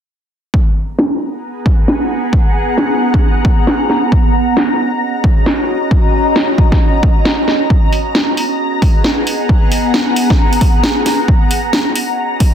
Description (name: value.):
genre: UK garage, two-step garage.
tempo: 134 BPM.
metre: 4/4.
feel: swing 62% on 16ths.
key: G# minor.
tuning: A4 = 439 Hz.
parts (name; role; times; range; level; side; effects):
electronic kick drum; drums; 0.5-12.5 s; none; -12 LUFS; equal; overdrive.
ethereal airy pad; texture; 1.4-12.5 s; B3 to A#5; -16 LUFS; equal; ensemble chorus, built-in reverb, phaser, sidechain pumping.
house drum kit; drums; 1.0-12.5 s; hi-hat, snare drum; -15 LUFS; equal; overdrive, low-pass filter on snare, low-pass filter on hats, low-pass filter on room.
room: little or no reverb.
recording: dense, heavily limited modern master.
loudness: -11 LUFS.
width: side -9 dB against mid.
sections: 0.5-12.5 A section.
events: filter sweep on drum 0.5-12.5.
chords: 0.5 G#m9; 4.1 D#m7; 7.7 G#m9; 11.3 D#m7.